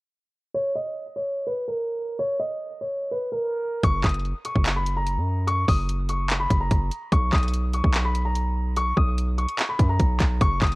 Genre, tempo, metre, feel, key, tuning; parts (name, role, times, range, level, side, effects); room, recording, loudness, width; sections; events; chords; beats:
hip hop, trap; 146 BPM; 4/4; half-time; B major; A4 = 440 Hz
dark baby grand piano; melody; 0.5-10.8 s; A#4 to D#6; -27 LUFS; equal; tape echo
distorted 808-style bass; bass; 3.8-10.8 s; F#1 to F#2; -24 LUFS; equal; distortion
trap drum kit; drums; 3.8-10.8 s; handclaps, hi-hat, kick drum; -22 LUFS; equal
digital ambience; worn, warbling old tape, cassette tape, warbly pitch drift, low-pass filter; -22 LUFS; side -22 dB against mid
0.5-3.8 A section; 3.8-10.8 B section
filter sweep 0.5-3.8
0.5 N.C.; 3.8 F#; 7.1 B
| 0.55 0.96 1.37 1.78 | 2.19 2.60 3.01 3.42 | 3.83 4.24 4.66 5.07 | 5.48 5.89 6.30 6.71 | 7.12 7.53 7.94 8.35 | 8.76 9.18 9.59 10.00 | 10.41